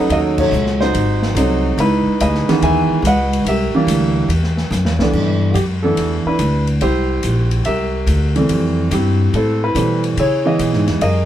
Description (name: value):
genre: jazz piano trio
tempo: 143 BPM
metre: 4/4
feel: swing 67% on 8ths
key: G major from 5.1 s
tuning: A4 = 436 Hz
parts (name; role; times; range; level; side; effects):
- warm upright piano; melody; 0.0-11.3 s; G2 to G#5; -16 LUFS; right 1 dB; none
- upright bass; bass; 0.1-11.3 s; G#1 to C#3; -17 LUFS; equal; none
- open jazz drum kit; drums; 0.1-11.1 s; crash cymbal, hi-hat, kick drum, ride cymbal, snare drum; -26 LUFS; left 2 dB; none
room: light reverb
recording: band playing live in one room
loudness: -14 LUFS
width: side -11 dB against mid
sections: 0.0-5.1 A section; 5.1-11.3 B section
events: band accent 0.3; drum fill 4.7-5.1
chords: 0.1 D#m7b5; 0.9 G#7b9; 1.8 C#m9; 3.5 C9; 5.1 G6; 6.8 C9; 8.5 Fmaj7; 10.2 C#m7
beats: | 0.10 0.52 0.94 1.36 | 1.78 2.20 2.62 3.04 | 3.46 3.87 4.29 4.71 | 5.13 5.55 5.97 6.39 | 6.81 7.23 7.65 8.07 | 8.49 8.91 9.33 9.75 | 10.17 10.59 11.01